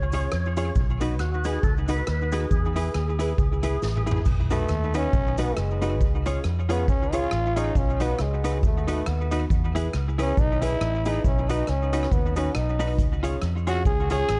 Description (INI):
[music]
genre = ska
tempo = 137 BPM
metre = 4/4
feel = swing 57% on 8ths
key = B mixolydian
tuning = A4 = 435 Hz
[part]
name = percussive tonewheel organ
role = melody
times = 0.0-4.0 s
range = F#4 to C#5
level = -35 LUFS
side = equal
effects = overdrive, chorus vibrato, slow rotary speaker, tape echo
[part]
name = vintage muted fingered electric bass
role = bass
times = 0.0-14.4 s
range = F#1 to E#2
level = -28 LUFS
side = equal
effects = none
[part]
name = semi-hollow electric guitar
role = accompaniment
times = 0.1-14.2 s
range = D#4 to C#5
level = -35 LUFS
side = equal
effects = subtle chorus, tape echo
[part]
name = bright upright piano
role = stabs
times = 0.1-14.2 s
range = B3 to C#5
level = -36 LUFS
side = equal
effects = none
[part]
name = street-band drum kit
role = drums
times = 0.1-14.4 s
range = crash cymbal, hi-hat, kick drum, rim click, snare drum, toms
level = -29 LUFS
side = equal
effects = none
[part]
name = cabasa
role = percussion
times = 0.1-14.4 s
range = none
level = -52 LUFS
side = equal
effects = tape echo
[part]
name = growling trombone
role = melody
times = 4.5-14.4 s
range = G#3 to G#4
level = -31 LUFS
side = equal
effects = tape echo
[sound]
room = light reverb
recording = dark, warm production, nothing above 10.7 kHz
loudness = -24 LUFS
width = mono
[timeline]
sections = 0.0-4.3 A section; 4.3-14.4 B section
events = drum fill 3.8-4.3; trombone solo 4.3-14.4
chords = 0.0 C#; 0.8 B; 2.5 E; 4.3 B; 6.0 C#; 7.8 B; 9.5 E; 11.2 B; 13.0 C#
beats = 0.32 | 0.76 1.19 1.63 2.07 | 2.51 2.94 3.38 3.82 | 4.26 4.70 5.13 5.57 | 6.01 6.45 6.88 7.32 | 7.76 8.19 8.63 9.07 | 9.50 9.94 10.38 10.81 | 11.25 11.68 12.12 12.55 | 12.98 13.42 13.85 14.29